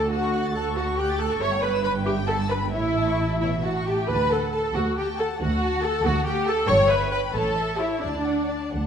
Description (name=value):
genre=quick classical-period movement for string orchestra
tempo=85-95 BPM (dotted quarters)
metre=6/8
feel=rubato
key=D major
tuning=A4 = 440 Hz
part: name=rich symphonic violin section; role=melody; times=0.0-8.9 s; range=C#5 to A6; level=-36 LUFS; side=left 4 dB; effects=none
part: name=rich studio violin section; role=second line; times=0.0-8.9 s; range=D4 to C#6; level=-32 LUFS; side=left 3 dB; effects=none
part: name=clear symphonic viola section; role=accompaniment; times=0.0-8.7 s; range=D4 to C#5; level=-23 LUFS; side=equal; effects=none
part: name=rich symphonic double bass section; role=bass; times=0.0-8.9 s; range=G1 to D2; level=-28 LUFS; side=right 2 dB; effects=none
part: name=warm studio cello section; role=bass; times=0.0-8.9 s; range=D2 to D3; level=-32 LUFS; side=right 2 dB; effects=none
room=wet scoring stage reverb, RT60 1.5 s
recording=none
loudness=-21 LUFS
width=side -8 dB against mid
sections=0.0-8.9 A section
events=none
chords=0.1 F#m/D; 1.4 Em/G; 2.7 A; 4.1 D; 6.7 Em/G; 7.3 A; 8.0 D